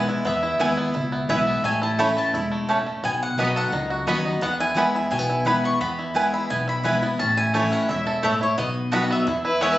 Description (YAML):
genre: bluegrass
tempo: 173 BPM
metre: 4/4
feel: straight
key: E major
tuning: A4 = 440 Hz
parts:
  - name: mandolin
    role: melody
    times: 0.0-9.8 s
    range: C#5 to C#6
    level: -25 LUFS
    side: left 1 dB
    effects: none
  - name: picked steel-string acoustic guitar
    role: accompaniment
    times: 0.0-9.8 s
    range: E2 to F#4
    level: -26 LUFS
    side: left 1 dB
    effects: none
  - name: bluegrass banjo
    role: arpeggios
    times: 0.0-9.8 s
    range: A3 to A4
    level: -28 LUFS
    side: right 2 dB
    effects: none
  - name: upright bass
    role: bass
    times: 0.0-9.8 s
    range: E1 to E2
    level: -31 LUFS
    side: equal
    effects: none
  - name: mandolin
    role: stabs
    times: 0.6-9.7 s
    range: A3 to B5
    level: -24 LUFS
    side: right 2 dB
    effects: none
  - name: clear fiddle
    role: second line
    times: 9.4-9.8 s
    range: B4 to C#5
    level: -23 LUFS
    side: equal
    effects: none
room: moderate small room reverb, RT60 0.5 s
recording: recorded on a phone in the room, studio reverb, nothing above 7.9 kHz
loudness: -20 LUFS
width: side -15 dB against mid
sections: 0.0-9.8 A section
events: none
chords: 0.0 E; 1.6 A; 3.0 B; 4.4 E; 7.2 A; 8.6 B; 9.3 E